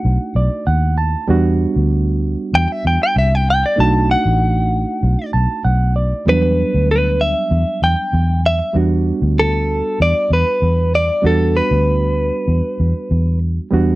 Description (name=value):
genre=blues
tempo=96 BPM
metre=4/4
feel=straight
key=E minor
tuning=A4 = 442 Hz
part: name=direct-recorded clean electric guitar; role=melody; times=0.0-13.4 s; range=A4 to A5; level=-17 LUFS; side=equal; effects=slapback echo
part: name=bright reed electric piano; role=accompaniment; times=0.0-14.0 s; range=F#3 to A5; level=-21 LUFS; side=right 4 dB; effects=none
part: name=vintage muted fingered electric bass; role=bass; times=0.0-14.0 s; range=A1 to E2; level=-16 LUFS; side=equal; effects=none
room=little or no reverb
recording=dry, close 1970s-style studio recording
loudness=-14 LUFS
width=side -18 dB against mid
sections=0.0-6.3 A section; 6.3-14.0 A section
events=clean electric guitar solo 0.0-6.3, 6.3-14.0; reed electric piano fill 0.0-1.3, 5.0-6.3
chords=0.0 B7#9; 1.3 Em9; 3.8 B7#9; 6.3 Em9